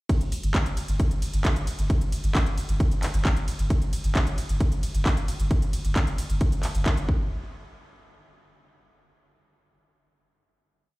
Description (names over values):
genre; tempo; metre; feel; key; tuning
driving peak-time techno; 133 BPM; 4/4; straight; unclear; A4 = 440 Hz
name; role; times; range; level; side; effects
electronic kick drum; drums; 0.1-7.2 s; none; -24 LUFS; equal; overdrive, studio reverb
techno drum kit; drums; 0.1-7.1 s; handclaps, hi-hat, ride cymbal; -32 LUFS; equal; overdrive, sidechain pumping on hats, studio reverb, sidechain pumping on cymbals
saturated sub bass; bass; 0.2-7.3 s; G1; -28 LUFS; equal; overdrive, sidechain pumping, low-pass filter
room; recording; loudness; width
little or no reverb; played on a big sound system in a bare room, large studio reverb; -22 LUFS; side -21 dB against mid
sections
0.1-7.3 drop; 7.3-9.1 final hit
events
drop 0.1-7.3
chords
none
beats
| 0.09 0.55 1.00 1.45 | 1.90 2.35 2.80 3.25 | 3.70 4.16 4.61 5.06 | 5.51 5.96 6.41 6.86